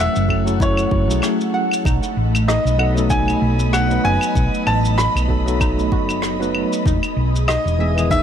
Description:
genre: sunset chillout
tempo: 96 BPM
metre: 4/4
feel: swing 56% on 16ths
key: unclear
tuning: A4 = 439 Hz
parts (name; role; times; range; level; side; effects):
- clear baby grand piano; melody; 0.0-8.2 s; C#5 to B5; -23 LUFS; equal; ping-pong delay
- tine electric piano; accompaniment; 0.0-8.2 s; D#3 to C#5; -23 LUFS; equal; medium tremolo, auto-pan, tape echo
- ethereal airy pad; sustained chords; 0.0-8.2 s; A3 to D#6; -24 LUFS; equal; ensemble chorus, built-in reverb
- hollow-body short-scale fingered electric bass; bass; 0.0-8.2 s; E1 to B1; -20 LUFS; equal; none
- shaker, claves and rim click; drums; 0.0-8.2 s; none; -26 LUFS; left 1 dB; none
- electronic kick drum; drums; 0.3-8.2 s; none; -21 LUFS; equal; none
- soft round pluck; arpeggios; 0.6-8.2 s; D#4 to F#5; -28 LUFS; right 2 dB; analog chorus, tape echo
room: light reverb, small room ambience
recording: none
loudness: -16 LUFS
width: side -9 dB against mid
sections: 0.0-8.2 A section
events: none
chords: 0.0 F#m7; 1.9 B7; 6.9 Emaj7

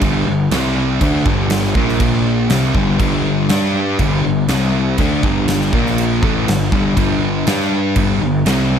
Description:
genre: hard rock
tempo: 121 BPM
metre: 4/4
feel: straight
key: G minor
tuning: A4 = 440 Hz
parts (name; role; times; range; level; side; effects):
- sludgy distorted guitar; riff; 0.0-8.8 s; G2 to G4; -19 LUFS; left 8 dB; overdrive
- sludgy distorted guitar; riff; 0.0-8.8 s; G2 to G4; -19 LUFS; right 7 dB; overdrive
- fuzz picked electric bass; bass; 0.0-8.8 s; G1 to G2; -20 LUFS; equal; overdrive
- gated 80s drum kit; drums; 0.0-8.6 s; crash cymbal, kick drum, snare drum; -19 LUFS; right 1 dB; none
room: moderate small room reverb, RT60 0.5 s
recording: none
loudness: -13 LUFS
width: side -8 dB against mid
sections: 0.0-8.8 A section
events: none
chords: 0.0 G5; 0.5 C5; 1.0 Gm; 2.0 Bb5; 2.5 G5; 4.5 C5; 5.0 G5; 5.7 Bb5; 6.2 G5

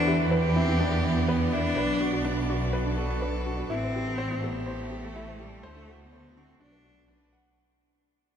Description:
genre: piano and strings electronica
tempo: 124 BPM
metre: 4/4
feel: straight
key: unclear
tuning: A4 = 440 Hz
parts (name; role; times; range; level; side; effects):
- clear cello; melody; 0.0-7.3 s; G3 to D4; -30 LUFS; left 1 dB; analog delay
- warm string quartet; sustained chords; 0.0-7.6 s; A2 to D5; -32 LUFS; right 2 dB; none
- warbly dusty pluck; arpeggios; 0.0-7.4 s; D4 to C5; -38 LUFS; left 2 dB; none
- dark concert grand piano; riff; 0.0-7.6 s; D4 to F#5; -32 LUFS; equal; analog delay
- rich symphonic double bass section; bass; 0.0-7.6 s; A1 to E2; -30 LUFS; equal; none
room: moderate huge ambient reverb, RT60 8.0 s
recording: dreamy mix soaked in reverb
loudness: -24 LUFS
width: side -8 dB against mid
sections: 0.0-7.6 A section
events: drop 0.0-7.6; fade-out 0.0-7.6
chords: 0.0 Em7; 1.8 Bm7; 3.7 Am7; 5.6 D7; 6.6 Bm7

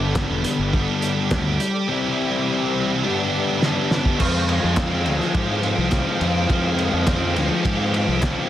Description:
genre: indie rock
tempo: 104 BPM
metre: 4/4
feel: straight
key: unclear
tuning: A4 = 438 Hz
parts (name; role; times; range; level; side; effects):
- soft string machine; sustained chords; 0.0-8.5 s; G4 to D6; -33 LUFS; equal; ensemble chorus
- biting overdriven guitar; riff; 0.0-8.5 s; G2 to F4; -24 LUFS; left 5 dB; none
- scooped high-gain guitar; riff; 0.0-8.5 s; E3 to G4; -24 LUFS; right 7 dB; distortion, analog chorus
- fuzz fingered electric bass; bass; 0.0-8.3 s; E1 to Ab2; -24 LUFS; equal; overdrive
- cloth-damped thuddy drum kit; drums; 0.2-8.4 s; crash cymbal, hi-hat, kick drum, ride cymbal, snare drum; -23 LUFS; equal; none
- group handclap; percussion; 0.2-8.4 s; none; -36 LUFS; left 4 dB; none
room: light reverb, studio reverb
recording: dense, heavily limited modern master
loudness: -18 LUFS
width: side -12 dB against mid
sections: 0.0-4.2 A section; 4.2-8.5 B section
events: drum fill 3.6-4.2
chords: 0.0 Gadd9; 1.9 Cadd9; 3.0 G6; 4.2 Fmadd9

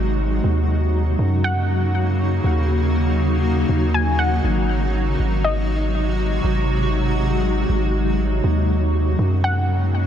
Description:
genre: hip hop, atmospheric cloud-rap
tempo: 120 BPM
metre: 4/4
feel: half-time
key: Eb dorian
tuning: A4 = 439 Hz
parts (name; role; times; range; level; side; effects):
- granular cloud pad; sustained chords; 0.0-10.1 s; C3 to Gb4; -22 LUFS; left 1 dB; built-in reverb
- long sustained 808-style bass; bass; 0.0-10.1 s; Ab1 to Gb2; -20 LUFS; equal; none
- warbly dusty pluck; melody; 1.4-6.4, 9.4-10.1 s; Eb5 to Ab5; -26 LUFS; left 2 dB; chorus, ping-pong delay
room: light reverb, digital ambience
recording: none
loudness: -17 LUFS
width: side -9 dB against mid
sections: 0.0-8.4 A section; 8.4-10.1 B section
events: none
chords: 0.4 Ebm7; 4.4 Ab7; 8.4 Ebm7

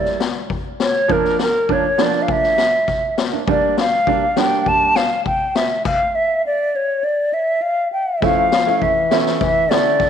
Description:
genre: klezmer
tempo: 101 BPM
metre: 4/4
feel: straight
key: G dorian sharp4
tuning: A4 = 438 Hz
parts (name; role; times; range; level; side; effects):
- hollow concert flute; melody; 0.0-10.1 s; Bb4 to A5; -17 LUFS; equal; none
- clear upright piano; accompaniment; 0.0-10.0 s; F3 to E4; -22 LUFS; right 13 dB; none
- street-band drum kit; drums; 0.1-10.1 s; crash cymbal, kick drum, snare drum; -22 LUFS; left 5 dB; none
- clear trombone; second line; 8.2-10.1 s; D3 to F3; -23 LUFS; left 11 dB; none
room: moderate echo chamber reverb, RT60 2.4 s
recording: 1960s-style stereo with parts hard left and right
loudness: -15 LUFS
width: side -8 dB against mid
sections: 0.0-8.2 A section; 8.2-10.1 B section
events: stop 5.9-8.2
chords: 0.0 Gm; 1.1 Bb; 3.5 Gm; 5.9 N.C.; 8.2 A

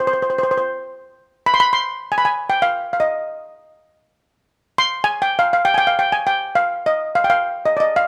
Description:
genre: Arabic maqam ensemble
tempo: free time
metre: none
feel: none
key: unclear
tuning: A4 = 440 Hz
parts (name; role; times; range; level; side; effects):
- steel pan; solo; 0.0-8.1 s; C5 to C6; -18 LUFS; equal; none
room: light reverb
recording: close, detailed microphones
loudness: -18 LUFS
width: mono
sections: 0.0-1.2 A section; 1.2-8.1 A section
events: none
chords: none

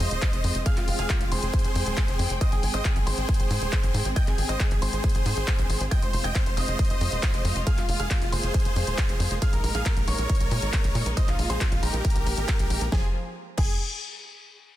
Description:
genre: uplifting trance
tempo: 137 BPM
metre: 4/4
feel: straight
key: F minor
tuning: A4 = 440 Hz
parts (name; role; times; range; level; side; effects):
- big supersaw lead; melody; 0.0-13.7 s; F4 to G5; -31 LUFS; equal; sidechain pumping, ping-pong delay
- warm grand piano; second line; 0.0-13.7 s; F5 to G6; -38 LUFS; right 2 dB; sidechain pumping, ping-pong delay
- bright studio string section; sustained chords; 0.0-13.1 s; F3 to G5; -35 LUFS; equal; sidechain pumping
- tight sequencer bass; bass; 0.0-13.8 s; Eb1 to Bb2; -28 LUFS; equal; sidechain pumping
- big-room dance drum kit; drums; 0.0-13.7 s; crash cymbal, handclaps, hi-hat, ride cymbal, snare drum; -33 LUFS; left 2 dB; studio ambience
- electronic kick drum; drums; 0.2-13.7 s; none; -24 LUFS; equal; studio ambience
room: little or no reverb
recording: dense, heavily limited modern master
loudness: -22 LUFS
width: side -14 dB against mid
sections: 0.0-12.9 A section; 12.9-14.7 B section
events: drop 0.0-12.9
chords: 0.0 Fm; 2.4 Abmaj7; 5.9 Fm; 9.4 Bb7sus4; 12.9 Fm

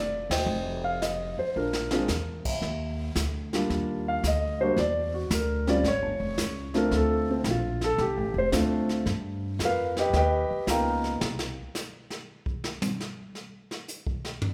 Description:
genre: jazz piano trio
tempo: 112 BPM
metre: 4/4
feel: swing 68% on 8ths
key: unclear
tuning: A4 = 440 Hz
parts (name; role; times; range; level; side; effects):
- dark concert grand piano; melody; 0.0-11.2 s; G3 to A#5; -29 LUFS; equal; none
- upright bass; bass; 0.0-11.6 s; F1 to G2; -33 LUFS; equal; none
- jazz brush drum kit; drums; 0.3-14.5 s; brushed snare drum, crash cymbal, hi-hat, kick drum, ride cymbal, snare drum, toms; -36 LUFS; equal; none
room: moderate recital hall reverb, RT60 1.7 s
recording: recorded in a church or concert hall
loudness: -28 LUFS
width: mono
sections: 0.0-2.6 A section; 2.6-14.5 B section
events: band accent 0.2; drum fill 1.6-2.1; grand piano solo 2.6-14.5; drum solo 11.2-14.5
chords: 0.5 F5; 1.6 Bb; 2.6 Ebmaj9; 4.8 Dsus2; 5.8 A7b13; 6.9 Dm7; 9.1 G7alt; 11.2 N.C.

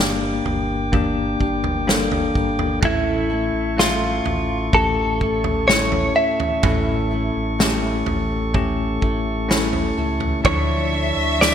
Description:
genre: pop ballad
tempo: 63 BPM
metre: 4/4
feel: straight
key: unclear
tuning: A4 = 441 Hz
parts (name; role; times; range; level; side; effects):
- bell-like tine electric piano; accompaniment; 0.0-11.5 s; G2 to E5; -23 LUFS; left 3 dB; medium stereo tremolo
- tonewheel organ; sustained chords; 0.0-11.5 s; Bb3 to D6; -28 LUFS; equal; stopped rotary speaker
- nylon-string guitar; arpeggios; 0.0-11.5 s; A2 to A4; -32 LUFS; right 5 dB; analog chorus
- sub bass with octave; bass; 0.0-11.5 s; G1 to D2; -27 LUFS; equal; none
- natural country drum kit; drums; 0.0-11.5 s; kick drum, snare drum, toms; -22 LUFS; right 1 dB; gated reverb
- downlifter; sound effects; 0.0-2.8 s; none; barely audible; none; none
- direct-recorded clean electric guitar; melody; 2.9-11.5 s; E4 to E5; -21 LUFS; equal; lush chorus
- rich studio violin section; second line; 10.4-11.5 s; E5; -23 LUFS; left 1 dB; none
room: light reverb, small room ambience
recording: bright 1980s-style digital production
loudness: -17 LUFS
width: side -9 dB against mid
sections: 0.0-11.5 A section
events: none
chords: 0.0 Gm; 2.8 A; 10.4 Dmadd9

